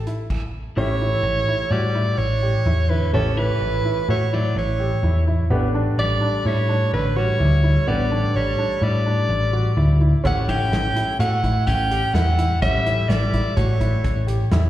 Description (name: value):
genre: progressive instrumental, band music in an uneven meter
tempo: 127 BPM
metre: 5/4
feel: straight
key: A mixolydian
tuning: A4 = 438 Hz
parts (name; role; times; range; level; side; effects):
- warm soprano saxophone; melody; 0.0-14.3 s; A4 to G5; -24 LUFS; right 2 dB; slapback echo, tape echo
- hollow-body short-scale picked electric bass; bass; 0.0-14.7 s; A1 to A2; -20 LUFS; equal; none
- felt-muted upright piano; arpeggios; 0.1-14.7 s; B3 to G4; -29 LUFS; right 1 dB; slapback echo
- vintage drum kit; drums; 0.1-0.4, 10.2-14.6 s; crash cymbal, hi-hat, kick drum, snare drum; -26 LUFS; equal; none
- clean electric guitar; second line; 0.8-14.3 s; C#3 to C#4; -30 LUFS; left 2 dB; analog chorus, slapback echo
- clear concert grand piano; accompaniment; 0.8-14.7 s; A3 to E5; -32 LUFS; left 1 dB; slapback echo
room: light reverb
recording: live gig heard through the venue's PA, recital hall reverb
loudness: -18 LUFS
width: side -13 dB against mid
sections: 0.8-14.7 A section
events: grand piano fill 14.3-14.7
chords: 0.0 A5; 0.8 A7; 5.5 G/A; 10.2 A7